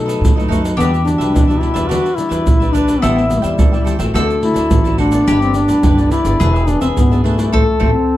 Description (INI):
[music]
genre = samba and choro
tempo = 107 BPM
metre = 4/4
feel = straight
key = unclear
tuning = A4 = 439 Hz
[part]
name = mandolin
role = second line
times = 0.0-8.2 s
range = E4 to A4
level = -22 LUFS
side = left 4 dB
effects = none
[part]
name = nylon-string guitar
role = accompaniment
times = 0.0-7.9 s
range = F#2 to Ab4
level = -22 LUFS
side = left 2 dB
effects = none
[part]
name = upright bass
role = bass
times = 0.0-7.9 s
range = E1 to B2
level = -19 LUFS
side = equal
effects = none
[part]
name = cavaquinho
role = accompaniment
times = 0.1-7.9 s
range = D4 to G5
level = -26 LUFS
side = right 5 dB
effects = none
[part]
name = tube shaker, pandeiro and surdo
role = percussion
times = 0.1-8.0 s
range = none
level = -17 LUFS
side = right 1 dB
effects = none
[part]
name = mellow duduk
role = melody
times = 0.5-8.2 s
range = G3 to F#4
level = -16 LUFS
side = left 1 dB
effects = plate reverb
[sound]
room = moderate large studio reverb, RT60 0.9 s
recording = dark, warm production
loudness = -12 LUFS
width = side -14 dB against mid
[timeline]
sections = 0.0-8.2 A section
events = band accent 7.5-8.2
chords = 0.0 B7; 0.8 Em9; 3.0 Am7; 4.2 D7; 5.3 G6; 6.4 E7; 7.5 Am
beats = 0.22 | 0.78 1.34 1.91 2.47 | 3.03 3.59 4.16 4.72 | 5.28 5.84 6.41 6.97 | 7.54 8.10